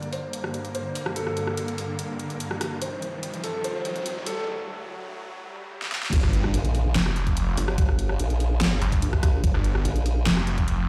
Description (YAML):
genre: heavy wobble dubstep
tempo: 145 BPM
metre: 4/4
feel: half-time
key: G harmonic minor, G minor from 6.1 s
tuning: A4 = 444 Hz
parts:
  - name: dark grand piano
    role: melody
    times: 0.0-4.5 s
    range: A4 to C5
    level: -35 LUFS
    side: equal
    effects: tape echo
  - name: supersaw chords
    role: sustained chords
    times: 0.0-6.1 s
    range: C2 to Bb3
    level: -36 LUFS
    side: equal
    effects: sidechain pumping, low-pass filter
  - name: dubstep drum kit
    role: drums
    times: 0.0-10.8 s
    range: crash cymbal, hi-hat, rim click, snare drum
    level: -32 LUFS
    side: equal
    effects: overdrive, studio reverb
  - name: riser, swell and impact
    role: sound effects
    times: 2.1-7.8 s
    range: none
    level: -39 LUFS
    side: equal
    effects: none
  - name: formant-sweep wobble bass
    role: bass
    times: 6.1-10.2 s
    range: G1 to Bb1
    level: -26 LUFS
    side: equal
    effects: chorus, overdrive
  - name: electronic kick drum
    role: drums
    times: 6.1-10.7 s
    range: none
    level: -25 LUFS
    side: equal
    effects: overdrive, studio reverb
  - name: snarling distorted saw bass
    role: bass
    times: 6.2-10.9 s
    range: F1 to G1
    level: -27 LUFS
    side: equal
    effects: distortion, overdrive
room: light reverb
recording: played on a big sound system in a bare room, stone room reverb, high-pass filter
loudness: -26 LUFS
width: mono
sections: 0.0-6.1 A section; 6.1-10.9 B section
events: build-up 0.0-6.1; riser 2.1-4.5; filter sweep on supersaw synth 0.0-6.1; filter sweep 0.0-6.1; break 4.5-6.1; swell 5.5-6.1; drum fill 5.8-6.1; drop 6.1-10.9; impact 6.1-7.8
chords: 0.0 Gm; 2.8 Cm; 4.5 D; 6.1 Gm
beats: 0.33 0.75 | 1.16 1.57 1.99 2.40 | 2.82 3.23 3.64 4.06 | 4.47 4.88 5.30 5.71 | 6.13 6.54 6.95 7.37 | 7.78 8.20 8.61 9.02 | 9.44 9.85 10.26 10.68